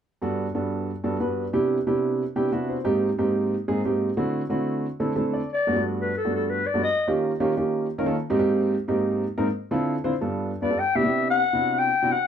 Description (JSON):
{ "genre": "jazz", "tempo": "182 BPM", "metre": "4/4", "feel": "straight", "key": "G major", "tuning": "A4 = 436 Hz", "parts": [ { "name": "dark upright piano", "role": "accompaniment", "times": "0.2-12.1 s", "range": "G2 to A5", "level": "-23 LUFS", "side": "right 1 dB", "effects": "none" }, { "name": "growling clarinet", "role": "melody", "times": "5.5-7.1, 10.6-12.3 s", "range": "A4 to G5", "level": "-22 LUFS", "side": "left 4 dB", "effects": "plate reverb" } ], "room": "wet studio ambience, RT60 0.5 s", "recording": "dark, warm production", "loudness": "-22 LUFS", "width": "side -8 dB against mid", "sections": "0.2-5.5 A section; 5.5-12.3 B section", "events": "upright piano fill 2.2-2.9, 5.0-5.5", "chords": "0.2 Gmaj7; 1.5 Cmaj7; 2.9 Abmaj7; 4.2 D7; 5.5 Gmaj7; 6.8 Eb7; 8.1 Abmaj7; 9.5 Dm7; 10.1 G7; 10.8 Cmaj7" }